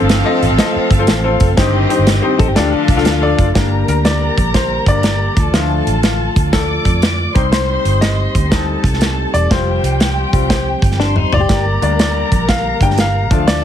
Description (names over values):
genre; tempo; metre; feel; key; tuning
uptempo 1960s-style soul; 121 BPM; 4/4; swing 66% on 8ths; G minor; A4 = 440 Hz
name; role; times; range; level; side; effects
clear horn section; second line; 0.0-3.4 s; Eb3 to A4; -24 LUFS; equal; none
warm studio violin section; second line; 0.0-13.6 s; C4 to D6; -22 LUFS; left 1 dB; none
clear grand piano; accompaniment; 0.0-13.6 s; G2 to G5; -18 LUFS; left 4 dB; none
percussive tonewheel organ; sustained chords; 0.0-13.6 s; D3 to A4; -25 LUFS; right 3 dB; fast rotary speaker
vintage muted fingered electric bass; bass; 0.0-13.6 s; E1 to F2; -17 LUFS; right 1 dB; none
natural country drum kit; drums; 0.1-13.6 s; hi-hat, kick drum, snare drum, toms; -16 LUFS; right 1 dB; none
clean electric guitar; riff; 2.4-3.4, 11.0-11.6 s; D4 to A4; -21 LUFS; left 6 dB; none
room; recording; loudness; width
little or no reverb; heavily compressed radio sound, multiband compression; -12 LUFS; side -10 dB against mid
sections
0.0-3.6 A section; 3.6-13.6 B section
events
grand piano solo 3.6-13.6; drum fill 11.0-11.5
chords
0.0 F/G; 1.6 Cm/G; 2.6 Dm; 3.6 Gm; 5.3 Dm; 7.3 Cm; 9.5 Fsus2; 11.5 Gm